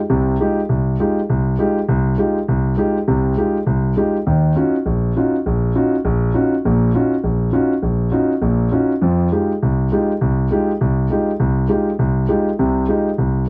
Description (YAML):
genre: jazz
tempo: 202 BPM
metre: 4/4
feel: swing 62% on 8ths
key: F minor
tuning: A4 = 440 Hz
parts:
  - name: warm concert grand piano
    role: solo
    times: 0.1-13.4 s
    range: Bb1 to G4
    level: -18 LUFS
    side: equal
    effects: none
room: moderate booth ambience, RT60 0.2 s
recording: dry, close 1970s-style studio recording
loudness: -18 LUFS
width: mono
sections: 0.0-13.5 A section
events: none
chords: 0.0 Fm9; 4.3 Ebm9; 9.0 Fm9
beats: 0.09 0.39 | 0.69 0.99 1.28 1.58 | 1.88 2.17 2.47 2.77 | 3.07 3.37 3.66 3.96 | 4.26 4.55 4.85 5.15 | 5.45 5.74 6.04 6.34 | 6.64 6.93 7.23 7.53 | 7.83 8.12 8.42 8.72 | 9.02 9.31 9.61 9.91 | 10.21 10.51 10.80 11.10 | 11.40 11.70 11.99 12.29 | 12.59 12.89 13.18